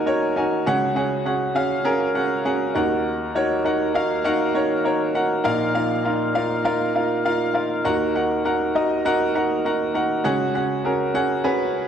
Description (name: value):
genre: pop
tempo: 100 BPM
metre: 4/4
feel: straight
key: Eb minor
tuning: A4 = 441 Hz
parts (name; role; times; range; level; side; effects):
- clear baby grand piano; solo; 0.0-11.9 s; Bb1 to Ab5; -19 LUFS; equal; none
room: wet recital hall reverb, RT60 1.6 s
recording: worn, warbling old tape, cassette tape, warbly pitch drift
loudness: -19 LUFS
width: side -8 dB against mid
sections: 0.0-11.9 A section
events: none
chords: 0.0 Ebm; 0.7 Dbsus4; 2.8 Ebm; 5.5 Bbsus4; 7.9 Ebm; 10.2 Dbsus4